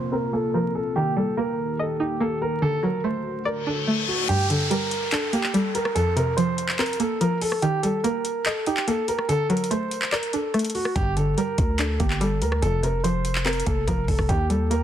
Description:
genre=hip hop, trap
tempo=144 BPM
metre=4/4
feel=half-time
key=G minor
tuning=A4 = 438 Hz
part: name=dark baby grand piano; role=melody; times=0.0-14.8 s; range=F#4 to C5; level=-26 LUFS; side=right 1 dB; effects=low-pass filter, digital delay
part: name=string-like resonator pluck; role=accompaniment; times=0.0-14.8 s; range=F2 to Eb5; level=-26 LUFS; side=right 1 dB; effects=chorus, low-pass filter
part: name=dark analog pad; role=sustained chords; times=0.0-4.3 s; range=C3 to G4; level=-30 LUFS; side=left 1 dB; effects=chorus, low-pass filter
part: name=downlifter, reverse cymbal and riser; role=sound effects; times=3.6-7.6, 14.3-14.8 s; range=none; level=-31 LUFS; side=left 3 dB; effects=none
part: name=trap drum kit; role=drums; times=4.3-14.8 s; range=handclaps, hi-hat, kick drum, rim click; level=-27 LUFS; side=equal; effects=vintage 12-bit sampler grit
part: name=growling 808-style bass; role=bass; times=11.0-14.8 s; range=F1 to Eb2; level=-25 LUFS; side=equal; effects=none
room=little or no reverb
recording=dense, heavily limited modern master, vinyl crackle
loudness=-21 LUFS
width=side -10 dB against mid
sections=0.0-4.3 A section; 4.3-14.8 B section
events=filter sweep 0.0-4.3; reverse cymbal 3.6-4.3; kick muted 4.3-11.0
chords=0.0 Fsus4; 1.0 Eb; 2.6 D; 4.3 Gm; 6.0 Fsus4; 7.6 Eb; 9.3 D; 11.0 Gm; 12.6 Fsus4; 14.3 Eb

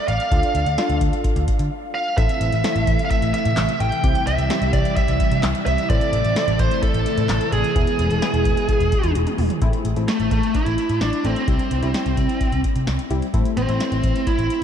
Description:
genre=synth-pop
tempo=129 BPM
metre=4/4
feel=straight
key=A minor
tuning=A4 = 441 Hz
part: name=bluesy overdriven lead guitar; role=melody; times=0.0-14.6 s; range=A3 to G5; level=-23 LUFS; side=right 2 dB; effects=distortion, analog delay
part: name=vintage muted picked electric bass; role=bass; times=0.1-14.5 s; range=E1 to D3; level=-22 LUFS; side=equal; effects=none
part: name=electro analog drum machine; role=drums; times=0.1-14.6 s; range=handclaps, hi-hat, kick drum, snare drum, toms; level=-23 LUFS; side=equal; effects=none
part: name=warm analog keys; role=accompaniment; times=0.3-14.3 s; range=G3 to A4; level=-28 LUFS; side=left 3 dB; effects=chorus
part: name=string machine, violas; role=sustained chords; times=2.2-9.6 s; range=B2 to E4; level=-26 LUFS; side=equal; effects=ensemble chorus
room=moderate cathedral reverb, RT60 5.4 s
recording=dreamy mix soaked in reverb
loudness=-18 LUFS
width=side -8 dB against mid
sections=0.0-9.6 A section; 9.6-14.6 B section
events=break 1.7-2.2; drum fill 9.2-9.6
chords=0.3 Dm; 2.2 Am; 4.0 C; 5.9 Am; 7.8 E; 9.6 Am; 11.5 C; 13.3 Am

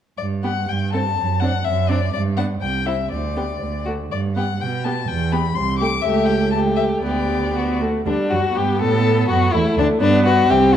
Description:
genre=quick classical-period movement for string quartet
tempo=122 BPM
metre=2/4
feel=rubato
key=G major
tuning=A4 = 441 Hz
part: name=rich violin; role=melody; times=0.2-10.8 s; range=D4 to D6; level=-25 LUFS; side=left 9 dB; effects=none
part: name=rich cello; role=bass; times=0.2-10.8 s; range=C2 to B2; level=-21 LUFS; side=right 4 dB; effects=none
part: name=rich violin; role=second line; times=0.4-10.8 s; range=D4 to A4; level=-21 LUFS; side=left 4 dB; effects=none
part: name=warm viola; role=accompaniment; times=0.4-10.8 s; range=G3 to C4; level=-23 LUFS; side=right 1 dB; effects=none
room=moderate recital hall reverb, RT60 1.7 s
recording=dark, warm production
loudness=-17 LUFS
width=side -10 dB against mid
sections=0.2-8.1 A section; 8.1-10.8 A section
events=none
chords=0.2 G; 0.7 Am7/G; 1.2 D7/F#; 2.1 G; 2.6 C; 3.1 G/D (rootless); 3.6 D5; 4.1 G; 4.6 G/B; 5.1 Em; 5.6 Am/C; 6.0 A7/C#; 7.0 G/D; 7.6 D; 8.1 G5; 8.6 Gadd9; 9.1 D (rootless); 10.0 G

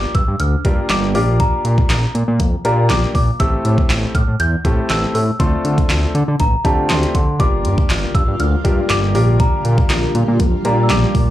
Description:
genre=dance-pop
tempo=120 BPM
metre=4/4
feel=straight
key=G dorian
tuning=A4 = 440 Hz
part: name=worn celesta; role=melody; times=0.0-11.3 s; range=A5 to G6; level=-23 LUFS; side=equal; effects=digital delay, slapback echo
part: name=clear concert grand piano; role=accompaniment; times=0.0-11.2 s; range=A3 to Bb4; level=-22 LUFS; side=left 2 dB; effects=sidechain pumping, slapback echo
part: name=fat analog bass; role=bass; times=0.0-11.3 s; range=G1 to D3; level=-17 LUFS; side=equal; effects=sidechain pumping
part: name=pop drum kit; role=drums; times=0.1-11.3 s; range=handclaps, hi-hat, kick drum, snare drum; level=-18 LUFS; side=equal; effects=overdrive
part: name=ensemble organ-string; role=sustained chords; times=7.4-11.3 s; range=D3 to F4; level=-22 LUFS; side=equal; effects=phaser, ensemble chorus, sidechain pumping
room=little or no reverb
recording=live gig heard through the venue's PA, club reverb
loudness=-13 LUFS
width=side -14 dB against mid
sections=0.0-11.3 A section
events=none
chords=0.0 Gm7; 1.1 Bb6; 3.4 Am7; 5.4 Dm7; 7.4 Gm7; 9.1 Bb6

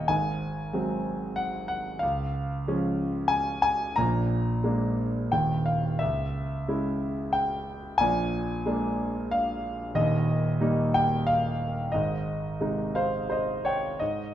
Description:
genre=classical, lyrical solo piano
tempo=91 BPM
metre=3/4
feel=rubato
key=Ab major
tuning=A4 = 440 Hz
part: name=warm concert grand piano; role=solo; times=0.0-14.3 s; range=Eb1 to Bb5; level=-25 LUFS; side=equal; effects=none
room=moderate recital hall reverb, RT60 1.7 s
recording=minimal, uncompressed stereo recording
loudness=-25 LUFS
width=side -11 dB against mid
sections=0.0-14.0 A section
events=grand piano fill 12.6-14.0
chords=0.1 Ab7; 2.0 Db; 4.0 Bb7; 5.3 N.C.; 6.0 Dbm; 8.0 Bb7; 10.0 Eb; 11.9 Ab

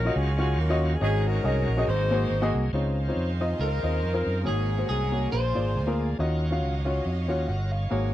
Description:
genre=uptempo gospel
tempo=139 BPM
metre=4/4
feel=swing 55% on 8ths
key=Db major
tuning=A4 = 439 Hz
part: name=clear saxophone section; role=melody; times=0.0-6.2 s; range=Bb3 to C5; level=-31 LUFS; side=left 2 dB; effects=none
part: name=warm grand piano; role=accompaniment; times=0.0-8.1 s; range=Ab2 to Gb5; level=-29 LUFS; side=left 2 dB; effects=none
part: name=bright tonewheel organ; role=sustained chords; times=0.0-8.1 s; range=Eb3 to F5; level=-38 LUFS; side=right 3 dB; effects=slow rotary speaker, overdrive
part: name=fingered electric bass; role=bass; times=0.0-8.1 s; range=G1 to Gb2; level=-26 LUFS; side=right 1 dB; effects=none
part: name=warm studio string section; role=sustained chords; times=2.7-8.1 s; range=Ab4 to Ab5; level=-41 LUFS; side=equal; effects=none
part: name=clean electric guitar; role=melody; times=3.6-6.0 s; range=Ab4 to C5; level=-33 LUFS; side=right 2 dB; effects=none
room=little or no reverb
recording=dry, close 1970s-style studio recording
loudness=-23 LUFS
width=side -13 dB against mid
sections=0.0-2.7 A section; 2.7-8.1 B section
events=none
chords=0.0 Ebm9; 1.0 Ab7sus4; 1.9 Ab9; 2.7 Dbmaj9; 4.5 Ab9sus4; 5.3 Bb7; 6.2 Ebm9

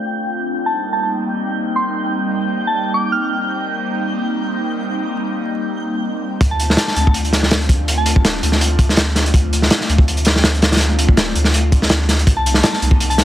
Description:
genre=drum and bass, jungle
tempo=164 BPM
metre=4/4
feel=swing 54% on 16ths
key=D phrygian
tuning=A4 = 439 Hz
part: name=airy breathy pad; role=sustained chords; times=0.0-13.2 s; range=G3 to F4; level=-22 LUFS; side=equal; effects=chorus, phaser, vintage 12-bit sampler grit
part: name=twinkling granular texture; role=texture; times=0.0-6.4 s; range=G5 to G6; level=-27 LUFS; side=right 1 dB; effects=built-in reverb
part: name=soft synth bell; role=melody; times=0.7-3.5, 6.5-8.2, 12.4-13.2 s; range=A5 to F6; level=-22 LUFS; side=equal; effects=chorus, vintage 12-bit sampler grit, dub echo
part: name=soft dub sub bass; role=bass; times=6.4-13.2 s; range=D1 to D2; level=-18 LUFS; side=equal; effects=none
part: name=crunchy breakbeat drum kit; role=drums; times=6.4-13.2 s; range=hi-hat, kick drum, snare drum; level=-14 LUFS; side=equal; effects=none
room=light reverb, studio ambience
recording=dense, heavily limited modern master, vinyl crackle, low-pass filter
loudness=-14 LUFS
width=side -12 dB against mid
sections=0.0-6.4 A section; 6.4-13.2 B section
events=filter sweep 0.0-6.4; build-up 6.4-13.2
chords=0.0 Dm7; 0.6 Cm7; 6.4 Dm7; 12.3 Cm7

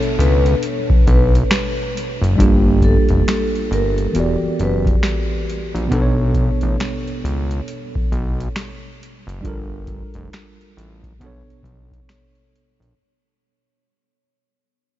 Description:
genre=lo-fi hip hop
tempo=68 BPM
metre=4/4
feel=swing 60% on 16ths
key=B minor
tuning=A4 = 440 Hz
part: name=vibraphone with soft mallets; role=melody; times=0.0-4.8 s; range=A4 to B4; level=-24 LUFS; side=left 1 dB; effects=analog delay
part: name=tine electric piano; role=accompaniment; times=0.0-13.0 s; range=B2 to D5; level=-22 LUFS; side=right 1 dB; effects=medium stereo tremolo
part: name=booming analog drum machine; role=drums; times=0.0-13.0 s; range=finger snaps, hi-hat, kick drum, snare drum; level=-19 LUFS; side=equal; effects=vintage 12-bit sampler grit
part: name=fat analog bass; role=bass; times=0.2-12.9 s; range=E1 to C#2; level=-19 LUFS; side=equal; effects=none
room=light reverb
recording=cassette tape, nothing above 7.6 kHz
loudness=-15 LUFS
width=side -14 dB against mid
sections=0.0-13.0 A section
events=fade-out 1.7-13.0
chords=0.0 Bm7; 2.4 Gm7; 4.1 Em7; 5.9 Bm7; 9.4 Gm7; 11.2 Bm7

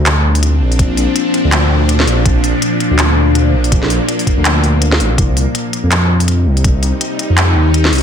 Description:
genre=half-time drum and bass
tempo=164 BPM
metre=4/4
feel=swing 58% on 16ths, half-time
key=unclear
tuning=A4 = 443 Hz
part: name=bowed-like drone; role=sustained chords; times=0.0-8.0 s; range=Bb2 to Eb4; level=-16 LUFS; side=left 1 dB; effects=built-in reverb, phaser, vintage 12-bit sampler grit, sidechain pumping
part: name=dark detuned saw bass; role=bass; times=0.0-8.0 s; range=Ab1 to F2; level=-13 LUFS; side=equal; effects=none
part: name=organic electronic drum kit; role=drums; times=0.1-8.0 s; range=handclaps, hi-hat, snare drum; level=-17 LUFS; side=equal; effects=none
part: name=electronic kick drum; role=drums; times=0.8-6.7 s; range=none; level=-13 LUFS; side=equal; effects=overdrive
room=light reverb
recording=none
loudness=-10 LUFS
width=side -8 dB against mid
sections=0.0-8.0 A section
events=none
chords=0.0 Bb; 5.2 Cm

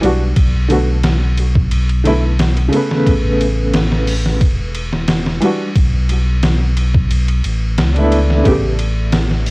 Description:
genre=trip hop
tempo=89 BPM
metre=4/4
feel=straight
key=B minor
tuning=A4 = 440 Hz
part: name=felt-muted upright piano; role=accompaniment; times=0.0-8.6 s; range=C#3 to B4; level=-17 LUFS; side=equal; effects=tremolo, vintage 12-bit sampler grit, tape echo
part: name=warm sub bass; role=bass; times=0.0-9.5 s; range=E1 to C#2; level=-15 LUFS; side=equal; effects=none
part: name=trip hop sampler-style drum kit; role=drums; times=0.0-9.5 s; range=hi-hat, kick drum, ride cymbal, snare drum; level=-17 LUFS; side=equal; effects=vintage 12-bit sampler grit, cassette tape
room=digital ambience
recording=home recording on cassette, vinyl crackle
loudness=-12 LUFS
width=side -24 dB against mid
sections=0.0-9.5 A section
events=none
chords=0.4 Bm7; 3.1 Aadd9; 4.4 Em7; 5.8 Bm7; 8.5 A9

